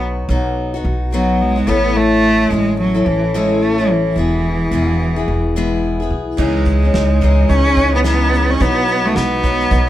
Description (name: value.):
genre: acoustic pop.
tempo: 108 BPM.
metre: 4/4.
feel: swing 60% on 16ths.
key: unclear.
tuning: A4 = 440 Hz.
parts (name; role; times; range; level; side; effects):
picked steel-string acoustic guitar; accompaniment; 0.0-9.9 s; A2 to A4; -18 LUFS; left 3 dB; none.
upright bass; bass; 0.0-9.9 s; E1 to C#2; -18 LUFS; equal; none.
clear cello; melody; 1.1-9.9 s; E3 to C#4; -17 LUFS; right 1 dB; none.
direct-recorded clean electric guitar; arpeggios; 6.4-9.9 s; E3 to D#4; -25 LUFS; right 8 dB; none.
cloth-damped thuddy drum kit; drums; 6.4-9.9 s; crash cymbal, kick drum, shaker, snare drum; -21 LUFS; equal; none.
room: moderate studio reverb, RT60 0.6 s.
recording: band playing live in one room.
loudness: -13 LUFS.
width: side -13 dB against mid.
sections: 0.0-6.4 A section; 6.4-9.9 B section.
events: none.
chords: 0.0 B; 1.7 A; 4.2 E; 6.4 C#madd9; 8.6 B.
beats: 0.29 0.85 1.40 | 1.95 2.51 3.06 3.62 | 4.17 4.72 5.28 5.83 | 6.39 6.94 7.50 8.05 | 8.61 9.16 9.71.